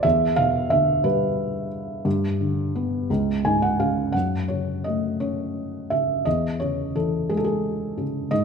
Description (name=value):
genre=classical, lyrical solo piano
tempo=58 BPM (dotted quarters)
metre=6/8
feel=rubato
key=C# minor from 4.1 s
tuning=A4 = 442 Hz
part: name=felt-muted upright piano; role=solo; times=0.0-8.4 s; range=C#2 to G#5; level=-21 LUFS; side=equal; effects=none
room=moderate recital hall reverb, RT60 1.6 s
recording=recorded in a church or concert hall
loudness=-21 LUFS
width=side -6 dB against mid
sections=0.0-4.1 A section; 4.1-8.4 B section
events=felt piano fill 3.1-4.1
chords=0.0 Em7; 2.1 G; 3.1 C#5; 4.1 F#m; 6.3 C#m/E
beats=| 0.04 1.04 | 2.06 3.09 | 4.14 5.21 | 6.26 7.29 | 8.31